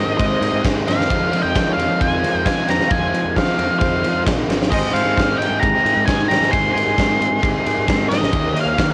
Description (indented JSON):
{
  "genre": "indie rock",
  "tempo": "133 BPM",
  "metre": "4/4",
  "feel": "straight",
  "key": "Ab major",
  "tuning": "A4 = 440 Hz",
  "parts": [
    { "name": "octave-fuzz lead guitar", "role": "melody", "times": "0.0-8.9 s", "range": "Eb5 to C6", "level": "-22 LUFS", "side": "equal", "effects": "distortion" },
    { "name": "barky tine electric piano", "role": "second line", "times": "0.0-8.9 s", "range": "Bb4 to Ab5", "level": "-31 LUFS", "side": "equal", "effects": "overdrive, fast tremolo, cassette tape, plate reverb" },
    { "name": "electric guitar through a small old amp", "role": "riff", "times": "0.0-8.9 s", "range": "Eb3 to Ab4", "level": "-28 LUFS", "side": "equal", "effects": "cassette tape" },
    { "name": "overdriven electric guitar", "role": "riff", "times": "0.0-8.9 s", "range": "Eb3 to Ab4", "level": "-28 LUFS", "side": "equal", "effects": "none" },
    { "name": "fuzz fingered electric bass", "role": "bass", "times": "0.0-8.9 s", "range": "Ab1 to F3", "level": "-27 LUFS", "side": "equal", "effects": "overdrive" },
    { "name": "big rock drum kit", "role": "drums", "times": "0.2-8.9 s", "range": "crash cymbal, kick drum, ride cymbal, snare drum", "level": "-23 LUFS", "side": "equal", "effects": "cassette tape" }
  ],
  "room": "light reverb",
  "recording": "home recording on cassette",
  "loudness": "-18 LUFS",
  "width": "mono",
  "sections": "0.0-8.9 A section",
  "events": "none",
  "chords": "0.0 Abmaj7; 1.1 Fm7; 4.7 Abmaj7; 8.3 Eb7sus4",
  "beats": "0.19 0.64 | 1.09 1.54 2.00 2.45 | 2.90 3.35 3.81 4.26 | 4.71 5.16 5.61 6.07 | 6.52 6.97 7.42 7.87 | 8.32 8.78"
}